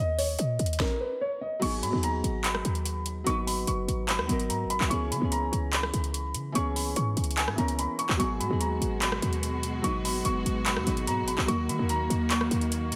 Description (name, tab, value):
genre	hip hop, trap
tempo	146 BPM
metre	4/4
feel	half-time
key	G# minor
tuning	A4 = 445 Hz
part	dark concert grand piano	melody	0.0-13.0 s	A#4 to C#6	-35 LUFS	equal	low-pass filter, diffuse ambient delay
part	short 808-style bass	bass	0.0-13.0 s	F#1 to D#3	-33 LUFS	equal	none
part	trap drum kit	drums	0.2-13.0 s	crash cymbal, handclaps, hi-hat, kick drum, rim click, snare drum	-34 LUFS	equal	overdrive
part	Celtic harp	accompaniment	1.6-13.0 s	E3 to B4	-34 LUFS	equal	low-pass filter
part	bright symphonic string section	sustained chords	8.2-13.0 s	B2 to F#4	-38 LUFS	equal	none
room	moderate plate reverb, RT60 1.8 s, studio reverb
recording	dreamy mix soaked in reverb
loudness	-28 LUFS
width	mono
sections	0.0-1.6 A section; 1.6-13.0 B section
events	stop 0.8-1.6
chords	0.0 D#5; 1.6 G#m7; 4.9 C#m7; 8.2 G#m7; 11.5 D#m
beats	0.39 0.80 1.21 | 1.62 2.03 2.44 2.85 | 3.27 3.68 4.09 4.50 | 4.91 5.32 5.73 6.14 | 6.55 6.96 7.37 7.79 | 8.20 8.61 9.02 9.43 | 9.84 10.25 10.66 11.07 | 11.48 11.89 12.31 12.72